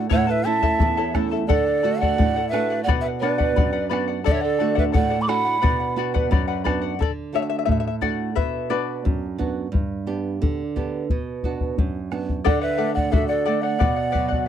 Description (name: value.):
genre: andean folk, Andean ensemble.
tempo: 88 BPM.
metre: 2/4.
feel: straight.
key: unclear.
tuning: A4 = 440 Hz.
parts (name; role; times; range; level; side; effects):
charango; accompaniment; 0.0-9.4, 12.4-14.5 s; E4 to A5; -26 LUFS; left 16 dB; none.
flamenco guitar; accompaniment; 0.0-14.5 s; E2 to G4; -25 LUFS; right 5 dB; none.
mellow hollow large quena; melody; 0.1-6.0, 12.5-14.5 s; D5 to D6; -24 LUFS; equal; none.
polished pan flute; second line; 0.1-6.0, 12.4-14.5 s; A4 to B5; -27 LUFS; right 10 dB; none.
bombo; percussion; 0.1-14.5 s; none; -23 LUFS; left 2 dB; none.
room: light reverb.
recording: dry, close 1970s-style studio recording.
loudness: -20 LUFS.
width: side -9 dB against mid.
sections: 0.0-7.0 A section; 7.0-12.5 B section; 12.5-14.5 C section.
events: charango solo 7.0-12.5.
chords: 0.1 A; 1.5 D; 2.9 Bm; 4.3 D; 5.6 Bm; 7.0 D; 8.4 Bm; 9.7 G; 11.1 Bm; 12.5 D; 13.8 Bm.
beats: | 0.11 0.80 | 1.49 2.18 | 2.87 3.56 | 4.25 4.94 | 5.62 6.31 | 7.00 7.68 | 8.37 9.05 | 9.73 10.42 | 11.10 11.78 | 12.46 13.13 | 13.81 14.48.